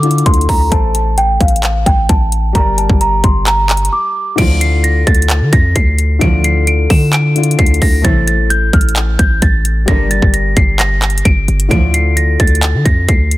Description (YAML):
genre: hip hop, trap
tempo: 131 BPM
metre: 4/4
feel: half-time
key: D minor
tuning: A4 = 440 Hz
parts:
  - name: celesta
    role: melody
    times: 0.0-13.4 s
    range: F5 to E7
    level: -16 LUFS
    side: right 1 dB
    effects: tape echo
  - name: warm baby grand piano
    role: accompaniment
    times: 0.0-13.4 s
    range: D3 to D5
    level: -22 LUFS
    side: left 7 dB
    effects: none
  - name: hard-hitting 808-style bass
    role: bass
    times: 0.0-13.4 s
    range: G1 to D3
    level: -14 LUFS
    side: equal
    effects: none
  - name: trap drum kit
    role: drums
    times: 0.0-13.4 s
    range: crash cymbal, handclaps, hi-hat, kick drum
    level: -13 LUFS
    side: equal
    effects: none
  - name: warm chamber string section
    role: stabs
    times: 4.4-11.9 s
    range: Bb1 to F3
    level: -20 LUFS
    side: right 2 dB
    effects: none
room: little or no reverb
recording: dense, heavily limited modern master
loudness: -10 LUFS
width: side -17 dB against mid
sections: 0.0-4.4 A section; 4.4-13.4 B section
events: break 3.9-4.4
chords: 0.0 Dmadd9; 0.7 Am; 2.5 Gm; 4.4 Dmadd9; 8.0 Am; 9.9 Gm; 11.7 Dmadd9